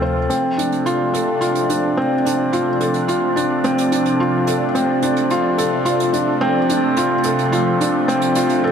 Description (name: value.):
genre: piano and strings electronica.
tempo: 108 BPM.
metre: 4/4.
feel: straight.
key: D minor.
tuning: A4 = 443 Hz.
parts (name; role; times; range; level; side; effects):
lush unison pad; sustained chords; 0.0-8.7 s; C3 to F4; -21 LUFS; right 1 dB; chorus, phaser.
felt-muted upright piano; riff; 0.0-8.7 s; C4 to C5; -17 LUFS; equal; ping-pong delay.
hi-hat; drums; 0.3-8.6 s; none; -29 LUFS; right 6 dB; none.
room: wet concert hall reverb, RT60 2.0 s.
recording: none.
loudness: -15 LUFS.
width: side -7 dB against mid.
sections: 0.3-8.7 A section.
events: build-up 0.3-8.7.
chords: 0.3 Dm7.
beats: | 0.31 0.87 1.42 1.98 | 2.53 3.09 3.64 4.20 | 4.75 5.31 5.87 6.42 | 6.98 7.53 8.09 8.64.